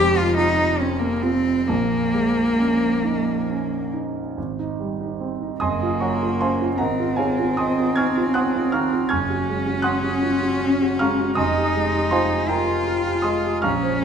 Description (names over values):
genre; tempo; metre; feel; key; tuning
classical, impressionist duo for cello and grand piano; 43-54 BPM (dotted quarters); 6/8; rubato; unclear; A4 = 440 Hz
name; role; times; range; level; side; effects
warm cello; melody; 0.0-14.0 s; Bb3 to G4; -21 LUFS; left 1 dB; none
warm grand piano; accompaniment; 0.0-14.0 s; F1 to Ab6; -22 LUFS; right 2 dB; none
room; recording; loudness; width
wet recital hall reverb, RT60 1.5 s; minimal, uncompressed stereo recording; -19 LUFS; side -7 dB against mid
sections
0.0-4.4 A section; 4.4-14.0 B section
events
none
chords
0.0 Fm; 1.7 Bbm7; 4.4 Abmaj7; 5.6 Gbmaj7; 6.8 Ab6; 9.1 Gbadd9; 11.4 Fm11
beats
0.39 | 1.69 3.03 | 4.37 5.60 | 6.79 7.98 | 9.11 10.23 | 11.38 12.50 | 13.63